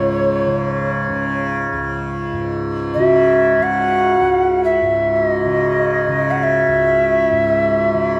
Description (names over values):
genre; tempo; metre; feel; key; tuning
world meditative, free-time meditation music; free time; none; none; C# minor; A4 = 438 Hz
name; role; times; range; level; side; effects
mellow Native American-style cedar flute; melody; 0.0-8.2 s; C#5 to F#5; -19 LUFS; equal; diffuse ambient delay
tanpura; drone; 0.0-8.2 s; C#2 to C#3; -22 LUFS; equal; none
bronze singing bowl; texture; 3.0-8.2 s; F#4; -22 LUFS; equal; none
room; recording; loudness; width
wet scoring stage reverb, RT60 1.8 s, small room ambience; none; -17 LUFS; mono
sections
0.0-8.2 A section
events
none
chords
none